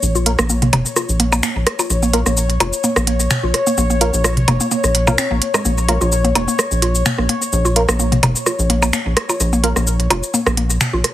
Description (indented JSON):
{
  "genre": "minimal techno",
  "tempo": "128 BPM",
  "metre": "4/4",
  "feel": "swing 54% on 16ths",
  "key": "Bb minor",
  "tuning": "A4 = 440 Hz",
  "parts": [
    { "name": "rubbery square bass", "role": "bass", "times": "0.0-11.0 s", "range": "F1 to Bb1", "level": "-18 LUFS", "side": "equal", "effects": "none" },
    { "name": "techno drum kit", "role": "drums", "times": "0.0-11.1 s", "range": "finger snaps, hi-hat, shaker", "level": "-20 LUFS", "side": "equal", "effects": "none" },
    { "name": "bubbling stepped-filter texture", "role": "texture", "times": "0.0-11.1 s", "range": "Db5", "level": "-24 LUFS", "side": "left 3 dB", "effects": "chorus, built-in reverb" },
    { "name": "mallet-like synth pluck", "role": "riff", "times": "0.2-11.0 s", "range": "Ab3 to F4", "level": "-22 LUFS", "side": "equal", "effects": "chorus, tape echo" },
    { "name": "wavetable chord stab", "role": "stabs", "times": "0.3-9.7 s", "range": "Bb3 to Bb4", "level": "-23 LUFS", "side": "right 2 dB", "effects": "tape echo" },
    { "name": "minimal click drum kit", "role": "percussion", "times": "0.4-11.1 s", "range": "percussion blips, rim click, toms", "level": "-19 LUFS", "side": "right 1 dB", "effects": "overdrive, tape echo" }
  ],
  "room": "moderate studio reverb, RT60 0.6 s",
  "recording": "heavily compressed radio sound, multiband compression",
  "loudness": "-14 LUFS",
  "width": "side -13 dB against mid",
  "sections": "0.0-11.1 A section",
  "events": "filter sweep on synth arpeggio sound 0.0-11.1; filter sweep on synth stab 0.0-11.1",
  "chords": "0.0 Bb5"
}